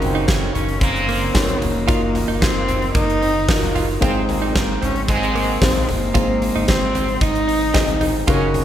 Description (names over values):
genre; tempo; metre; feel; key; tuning
piano-driven pop; 112 BPM; 4/4; straight; Ab mixolydian; A4 = 440 Hz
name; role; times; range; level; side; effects
muted French horn section; second line; 0.0-8.6 s; Ab2 to Db4; -25 LUFS; right 2 dB; none
felt-muted upright piano; accompaniment; 0.0-8.6 s; Ab2 to Eb5; -23 LUFS; left 1 dB; none
sub bass with octave; bass; 0.0-8.6 s; F1 to Bb1; -25 LUFS; equal; none
huge arena drum kit; drums; 0.0-8.6 s; hi-hat, kick drum, snare drum, toms; -20 LUFS; equal; none
direct-recorded clean electric guitar; riff; 0.1-8.4 s; Bb3 to F4; -27 LUFS; right 5 dB; none
rich cello; melody; 0.5-8.0 s; Bb3 to Eb4; -23 LUFS; left 1 dB; none
room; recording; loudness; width
moderate concert hall reverb, RT60 2.4 s; recorded in a church or concert hall; -16 LUFS; side -10 dB against mid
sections
0.0-8.6 A section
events
none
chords
0.0 Gb6; 1.9 Ebmadd9/Gb; 4.0 Ab